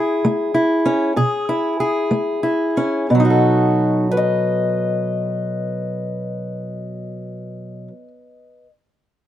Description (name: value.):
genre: folk, solo fingerstyle acoustic guitar.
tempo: 59-66 BPM (dotted quarters).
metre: 6/8.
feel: straight.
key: B mixolydian.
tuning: A4 = 439 Hz.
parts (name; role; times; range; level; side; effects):
fingerpicked acoustic archtop guitar; solo; 0.0-8.7 s; B2 to D#5; -17 LUFS; equal; none.
room: little or no reverb.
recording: close, detailed microphones.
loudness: -17 LUFS.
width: side -12 dB against mid.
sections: 0.0-3.1 A section; 3.1-7.2 B section.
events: slowing down 0.0-3.1.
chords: 0.0 Amaj7; 3.1 B7.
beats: 0.23 | 1.15 2.10 | 3.10 4.11 | 5.13 6.15.